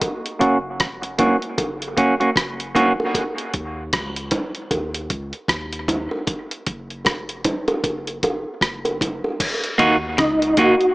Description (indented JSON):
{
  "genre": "dub reggae",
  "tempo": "77 BPM",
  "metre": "4/4",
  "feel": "swing 59% on 16ths",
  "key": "Eb minor",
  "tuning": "A4 = 440 Hz",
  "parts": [
    { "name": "dusty soul sampler-style drum kit", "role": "drums", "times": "0.0-10.9 s", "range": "crash cymbal, hi-hat, kick drum, rim click", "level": "-22 LUFS", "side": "equal", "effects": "none" },
    { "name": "bongos", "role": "percussion", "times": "0.0-9.4 s", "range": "none", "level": "-26 LUFS", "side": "right 1 dB", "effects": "dub echo" },
    { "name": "semi-hollow electric guitar", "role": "accompaniment", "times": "0.4-2.9, 9.8-10.7 s", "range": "Bb3 to Gb4", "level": "-19 LUFS", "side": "right 1 dB", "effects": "low-pass filter, dub echo" },
    { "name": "soft dub sub bass", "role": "bass", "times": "0.4-10.6 s", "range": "F1 to Eb2", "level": "-34 LUFS", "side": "equal", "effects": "none" },
    { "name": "clean electric guitar", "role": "riff", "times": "9.8-10.4 s", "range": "Db3 to Eb3", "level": "-28 LUFS", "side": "left 2 dB", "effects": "dub echo" },
    { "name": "percussive tonewheel organ", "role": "melody", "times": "10.2-10.9 s", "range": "Eb4 to Gb4", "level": "-16 LUFS", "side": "equal", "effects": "chorus vibrato, fast rotary speaker, dub echo" }
  ],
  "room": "moderate plate reverb, RT60 2.7 s",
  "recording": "small speaker sound",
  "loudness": "-19 LUFS",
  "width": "side -21 dB against mid",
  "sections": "0.0-9.4 A section; 9.4-10.9 B section",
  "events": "break 3.1-9.4",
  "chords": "0.0 Gb; 3.1 Dbsus2; 6.3 N.C.; 9.4 Ebm"
}